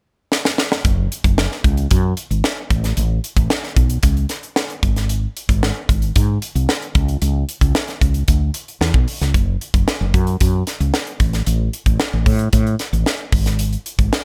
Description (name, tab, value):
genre	polished 1980s jazz-funk pop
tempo	113 BPM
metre	4/4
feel	straight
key	F# minor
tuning	A4 = 439 Hz
part	crisp fusion drum kit	drums	0.3-14.2 s	hi-hat, kick drum, snare drum	-20 LUFS	equal	none
part	woody fretless electric bass	bass	0.8-14.1 s	F#1 to A2	-20 LUFS	equal	none
room	little or no reverb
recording	none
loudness	-18 LUFS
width	mono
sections	0.8-9.3 A section; 9.3-14.2 B section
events	drum fill 0.3-0.8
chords	none